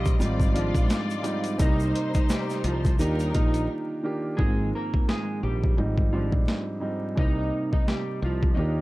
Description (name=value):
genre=hip hop, boom-bap hip-hop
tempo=86 BPM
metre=4/4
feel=swing 58% on 16ths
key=C minor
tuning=A4 = 440 Hz
part: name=electric guitar at the edge of break-up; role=melody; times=0.0-8.8 s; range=F3 to Eb5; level=-31 LUFS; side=right 1 dB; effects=high-pass filter, low-pass filter, tape echo
part: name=dark grand piano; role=accompaniment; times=0.0-8.8 s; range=Ab2 to Bb4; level=-30 LUFS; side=right 1 dB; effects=cassette tape, high-pass filter, low-pass filter
part: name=warm studio string section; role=stabs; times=0.0-3.7 s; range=G3 to Eb5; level=-33 LUFS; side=left 2 dB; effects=high-pass filter, low-pass filter, tape echo
part: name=woody fretless electric bass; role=bass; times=0.0-8.8 s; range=Ab1 to Eb2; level=-27 LUFS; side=equal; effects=none
part: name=boom bap sampler-style drum kit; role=drums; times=0.1-8.6 s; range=hi-hat, kick drum, snare drum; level=-24 LUFS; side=equal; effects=overdrive
part: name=tube shaker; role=percussion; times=0.1-3.7 s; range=none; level=-47 LUFS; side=left 4 dB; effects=none
room=little or no reverb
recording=dark, warm production, vinyl crackle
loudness=-23 LUFS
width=side -19 dB against mid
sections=0.0-4.4 A section; 4.4-8.8 B section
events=break 3.7-4.4; hi-hats muted 4.4-8.8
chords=0.2 Fm7/Ab; 1.6 Cm7; 3.0 Ebmaj7; 4.4 Ab6; 5.8 Fm7/Ab; 7.2 Cm7